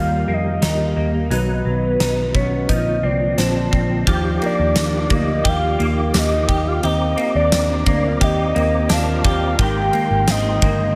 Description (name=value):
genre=dream pop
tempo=87 BPM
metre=4/4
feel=straight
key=Eb major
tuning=A4 = 440 Hz
part: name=soft octave-layered synth lead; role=melody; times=0.0-11.0 s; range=B4 to G5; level=-24 LUFS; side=equal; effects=chorus, phaser, digital delay
part: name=mellow tonewheel organ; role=sustained chords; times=0.0-11.0 s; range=D3 to D6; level=-28 LUFS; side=equal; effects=chorus vibrato, fast rotary speaker
part: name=semi-hollow electric guitar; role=arpeggios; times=0.0-11.0 s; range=Eb3 to G4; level=-26 LUFS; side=equal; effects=ensemble chorus, digital delay
part: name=vintage muted picked electric bass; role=bass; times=0.0-10.9 s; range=G1 to F2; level=-24 LUFS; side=equal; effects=none
part: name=huge arena drum kit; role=drums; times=0.6-10.8 s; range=hi-hat, kick drum, ride cymbal, snare drum, tambourine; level=-24 LUFS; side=equal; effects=none
room=light reverb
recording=none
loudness=-18 LUFS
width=mono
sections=0.0-4.1 A section; 4.1-11.0 B section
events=none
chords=0.0 Eb; 1.3 B; 2.7 Bbadd9; 4.1 Ebmaj9; 6.8 Cm9; 9.6 Abmaj9